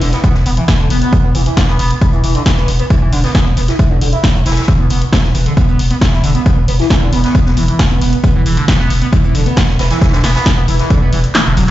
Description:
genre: driving peak-time techno.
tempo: 135 BPM.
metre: 4/4.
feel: straight.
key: unclear.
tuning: A4 = 439 Hz.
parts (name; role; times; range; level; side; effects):
overdriven synth lead; riff; 0.0-11.7 s; D3 to E4; -17 LUFS; equal; distortion, phaser, lush chorus, sidechain pumping, dub echo.
saturated sub bass; bass; 0.0-11.7 s; E1; -16 LUFS; equal; overdrive, sidechain pumping, low-pass filter.
punchy analog drum machine; drums; 0.0-11.7 s; handclaps, hi-hat, snare drum; -19 LUFS; left 1 dB; sidechain pumping on hats.
swinging big-band drum kit; drums; 0.0-11.7 s; hi-hat, snare drum; -26 LUFS; left 1 dB; high-pass filter on hats, high-pass filter on snare, high-pass filter on room.
electronic kick drum; drums; 0.2-11.0 s; none; -12 LUFS; equal; overdrive.
room: light reverb, studio reverb.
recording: played on a big sound system in a bare room, large studio reverb, nothing above 7.7 kHz.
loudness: -10 LUFS.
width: side -14 dB against mid.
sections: 0.0-11.7 A section.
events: kick drops out 11.3-11.7; drum fill 11.3-11.7.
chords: 0.0 E5.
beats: 0.24 0.68 | 1.13 1.57 2.02 2.46 | 2.90 3.35 3.79 4.24 | 4.68 5.13 5.57 6.01 | 6.46 6.90 7.35 7.79 | 8.24 8.68 9.13 9.57 | 10.02 10.46 10.90 11.35.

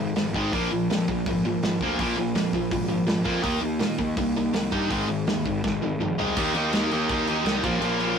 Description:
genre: punk rock.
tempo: 164 BPM.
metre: 4/4.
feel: straight.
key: unclear.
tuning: A4 = 441 Hz.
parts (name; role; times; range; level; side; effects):
sludgy distorted guitar; riff; 0.0-8.2 s; Ab2 to Eb4; -24 LUFS; equal; overdrive.
fuzz picked electric bass; bass; 0.0-8.1 s; F1 to Bb2; -30 LUFS; equal; overdrive.
loose indie drum kit; drums; 0.2-8.1 s; crash cymbal, hi-hat, kick drum, snare drum, toms; -29 LUFS; equal; none.
room: light reverb.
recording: rough rehearsal-room recording, warm saturation.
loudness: -22 LUFS.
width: side -7 dB against mid.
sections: 0.0-6.4 A section; 6.4-8.2 B section.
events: drum fill 5.6-6.4.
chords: 0.0 Ab5; 0.5 Bb5; 3.4 Eb5; 4.9 Ab5; 6.4 Eb5; 7.6 Bb5.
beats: 0.15 | 0.52 0.88 1.25 1.61 | 1.98 2.35 2.71 3.08 | 3.44 3.81 4.17 4.54 | 4.90 5.27 5.63 6.00 | 6.36 6.73 7.09 7.46 | 7.82.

